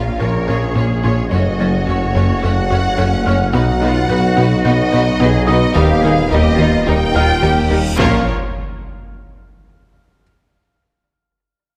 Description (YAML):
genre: cinematic, hybrid orchestral and electronic film score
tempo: 108 BPM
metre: 4/4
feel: straight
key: Bb phrygian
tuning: A4 = 440 Hz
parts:
  - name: warm symphonic violin section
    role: melody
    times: 0.0-8.3 s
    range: Db5 to G5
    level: -24 LUFS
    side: equal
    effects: none
  - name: mellow French horn section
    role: sustained chords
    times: 0.0-8.2 s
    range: A3 to F4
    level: -26 LUFS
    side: equal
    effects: none
  - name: mallet-like synth pluck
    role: arpeggios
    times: 0.0-7.9 s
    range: Eb3 to B4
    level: -27 LUFS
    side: equal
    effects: none
  - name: rubbery square bass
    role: riff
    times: 0.0-7.9 s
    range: Eb2 to B3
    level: -21 LUFS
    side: equal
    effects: none
  - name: rich symphonic cello section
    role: bass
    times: 0.0-8.3 s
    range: Bb2 to Bb4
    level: -26 LUFS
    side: equal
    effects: none
  - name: rich symphonic double bass section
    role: bass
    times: 0.0-8.3 s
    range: Gb1 to Eb2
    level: -24 LUFS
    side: equal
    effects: none
  - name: swelling detuned saw bass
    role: bass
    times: 0.0-8.3 s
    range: Eb1 to B1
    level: -26 LUFS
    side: equal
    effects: none
  - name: warm tuba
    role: bass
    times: 0.0-8.2 s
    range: Gb1 to Eb2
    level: -24 LUFS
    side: equal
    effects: none
  - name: impact and reverse cymbal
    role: sound effects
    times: 0.0-1.3, 7.6-10.2 s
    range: none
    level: -28 LUFS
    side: equal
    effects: none
  - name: clear grand piano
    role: texture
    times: 0.0-8.0 s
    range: Ab4 to Bb6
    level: -31 LUFS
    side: equal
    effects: none
  - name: clear symphonic violin section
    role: second line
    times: 0.2-8.3 s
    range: Eb4 to Db5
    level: -28 LUFS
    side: equal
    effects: none
  - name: rich symphonic viola section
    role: accompaniment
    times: 0.2-8.3 s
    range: F3 to D#4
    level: -26 LUFS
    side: equal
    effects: none
room: moderate scoring stage reverb, RT60 1.9 s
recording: none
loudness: -15 LUFS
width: mono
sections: 0.0-8.0 A section; 8.0-10.2 B section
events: impact 0.0-1.3, 8.0-10.2; reverse cymbal 7.6-8.0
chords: 0.0 Bbm; 1.3 Gbm; 3.5 B; 5.8 Eb; 8.0 Bbm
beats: 0.21 0.77 | 1.32 1.88 2.43 2.99 | 3.54 4.10 4.66 5.21 | 5.77 6.32 6.88 7.43 | 7.99 8.54 9.10 9.66